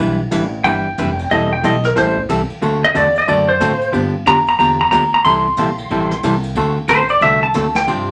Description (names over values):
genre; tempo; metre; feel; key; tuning
country, western swing; 183 BPM; 4/4; swing 62% on 8ths; unclear; A4 = 440 Hz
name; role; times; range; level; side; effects
archtop guitar, miked and amplified; accompaniment; 0.0-8.1 s; C3 to B4; -20 LUFS; equal; none
upright bass; bass; 0.0-8.1 s; E1 to A2; -27 LUFS; equal; none
jazz brush drum kit; drums; 0.3-8.0 s; hi-hat, kick drum, ride cymbal, snare drum; -33 LUFS; equal; none
clean lap steel guitar; second line; 0.6-7.9 s; Bb4 to C6; -16 LUFS; equal; none
room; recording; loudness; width
wet club reverb, RT60 0.5 s; none; -15 LUFS; mono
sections
0.0-8.1 A section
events
electric slide guitar solo 0.0-8.1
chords
0.0 Em7; 1.3 Am7/E; 2.6 D7; 3.9 G7; 5.2 C6; 6.6 D7